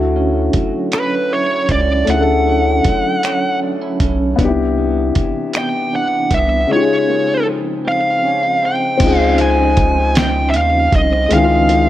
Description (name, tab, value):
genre	slow six-eight R&B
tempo	52 BPM (dotted quarters)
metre	6/8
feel	straight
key	unclear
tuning	A4 = 440 Hz
part	electric guitar through a small old amp	second line	0.0-11.9 s	C3 to E4	-21 LUFS	right 3 dB	harmonic tremolo
part	dark grand piano	accompaniment	0.0-11.9 s	C#3 to A4	-18 LUFS	left 5 dB	none
part	round analog bass	bass	0.0-11.9 s	B1 to D#2	-18 LUFS	right 1 dB	none
part	dusty soul sampler-style drum kit	drums	0.5-11.9 s	crash cymbal, finger snaps, hi-hat, kick drum, snare drum	-18 LUFS	right 1 dB	none
part	high-gain lead guitar	melody	0.9-11.9 s	B4 to G#5	-16 LUFS	right 1 dB	distortion, slapback echo
room	light reverb, digital ambience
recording	none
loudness	-13 LUFS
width	side -13 dB against mid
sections	0.0-9.0 A section; 9.0-11.9 B section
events	none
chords	0.0 Dmaj9; 4.4 Cmaj9; 6.7 C#maj9